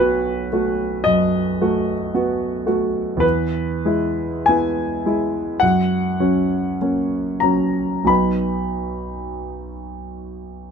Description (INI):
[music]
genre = classical, romantic nocturne for solo piano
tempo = 45-56 BPM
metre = 4/4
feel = rubato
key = B major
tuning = A4 = 440 Hz
[part]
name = clear concert grand piano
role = solo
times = 0.0-10.7 s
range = B1 to B5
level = -18 LUFS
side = equal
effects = none
[sound]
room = light reverb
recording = close, detailed microphones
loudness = -18 LUFS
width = side -6 dB against mid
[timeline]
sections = 0.0-10.7 A section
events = none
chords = 0.0 B7; 3.2 E; 5.6 F#; 8.1 B